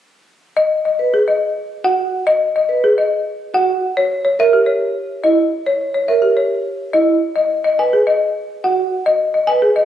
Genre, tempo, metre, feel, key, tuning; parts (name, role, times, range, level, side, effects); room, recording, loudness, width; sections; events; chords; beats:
classical, minimalist pattern music; 106 BPM; 3/4; straight; G# minor; A4 = 441 Hz
folk marimba with hard mallets; melody; 0.6-9.8 s; G4 to G#5; -15 LUFS; left 2 dB
vibraphone with soft mallets; arpeggios; 1.0-9.7 s; E4 to B4; -18 LUFS; right 4 dB
moderate scoring stage reverb, RT60 1.5 s; recorded on a phone in the room, club reverb, compression; -14 LUFS; side -10 dB against mid
0.6-9.8 A section
0.6 G#m7 (rootless); 4.0 D#7(no3) (rootless); 7.4 G#m7
| 0.57 1.14 1.70 | 2.27 2.84 3.40 | 3.97 4.53 5.10 | 5.67 6.23 6.80 | 7.36 7.93 8.50 | 9.06 9.63